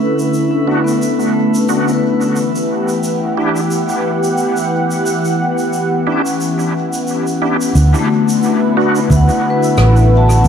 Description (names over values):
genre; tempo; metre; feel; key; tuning
ambient dub; 89 BPM; 4/4; swing 57% on 16ths; unclear; A4 = 440 Hz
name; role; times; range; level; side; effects
warm analog pad; sustained chords; 0.0-10.5 s; D3 to F#5; -16 LUFS; right 1 dB; chorus
vibraphone with medium hard mallets; arpeggios; 0.0-10.5 s; A3 to A5; -18 LUFS; left 5 dB; dub echo
drifting glass-harmonics texture; texture; 0.0-7.8 s; E4 to E5; -28 LUFS; equal; chorus, built-in reverb
shaker and rim click; drums; 0.2-10.5 s; none; -27 LUFS; right 1 dB; dub echo
bright tonewheel organ; stabs; 0.7-9.0 s; B3 to G4; -21 LUFS; right 2 dB; overdrive, chorus vibrato, fast rotary speaker, dub echo
hollow-body short-scale fingered electric bass; bass; 7.8-10.5 s; A1 to D2; -9 LUFS; right 1 dB; none
electronic kick drum; drums; 9.1-9.3 s; none; -20 LUFS; right 1 dB; overdrive
room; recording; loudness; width
moderate lush hall reverb, RT60 1.8 s, small room ambience; none; -12 LUFS; side -8 dB against mid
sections
0.0-7.8 A section; 7.8-10.5 B section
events
filter sweep on analog synth pad 0.0-7.8; filter sweep on tonewheel organ 0.0-7.8; filter sweep on vibraphone 0.0-7.8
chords
0.0 D6; 2.4 Em; 7.8 D6